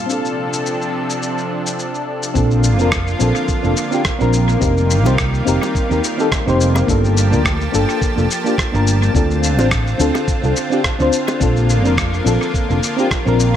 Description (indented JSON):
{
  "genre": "sunset chillout",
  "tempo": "106 BPM",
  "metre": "4/4",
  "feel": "swing 55% on 16ths",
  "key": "Bb major",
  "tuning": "A4 = 440 Hz",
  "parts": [
    { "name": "mellow FM electric piano", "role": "accompaniment", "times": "0.0-13.6 s", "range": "Bb3 to C5", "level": "-19 LUFS", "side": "left 2 dB", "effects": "chorus, auto-pan, dub echo" },
    { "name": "lush unison pad", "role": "sustained chords", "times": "0.0-13.6 s", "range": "C3 to A5", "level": "-22 LUFS", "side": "equal", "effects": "chorus" },
    { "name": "drifting glass-harmonics texture", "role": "texture", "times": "0.0-2.4 s", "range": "F4 to F5", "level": "-35 LUFS", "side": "left 2 dB", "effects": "none" },
    { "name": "electronic shaker and rim click", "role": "drums", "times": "0.1-13.5 s", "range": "none", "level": "-24 LUFS", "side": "left 1 dB", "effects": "studio reverb, dub echo" },
    { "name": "mellow fretless electric bass", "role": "bass", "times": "2.4-13.6 s", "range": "F1 to Eb2", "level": "-16 LUFS", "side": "right 1 dB", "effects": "ensemble chorus" },
    { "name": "electronic kick drum", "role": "drums", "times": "2.4-13.2 s", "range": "none", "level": "-21 LUFS", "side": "right 1 dB", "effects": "studio reverb" },
    { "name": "bongos", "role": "percussion", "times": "5.1-11.4 s", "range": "none", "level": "barely audible", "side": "none", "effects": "none" }
  ],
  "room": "moderate spring reverb, RT60 1.4 s, digital ambience",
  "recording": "echo-heavy mix",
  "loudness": "-14 LUFS",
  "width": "side -10 dB against mid",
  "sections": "0.0-2.4 A section; 2.4-13.6 B section",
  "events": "none",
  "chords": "0.1 Dm7; 2.4 Bbmaj7; 4.6 F9sus4; 6.9 Gm9; 9.1 Dm7; 11.4 Bbmaj7"
}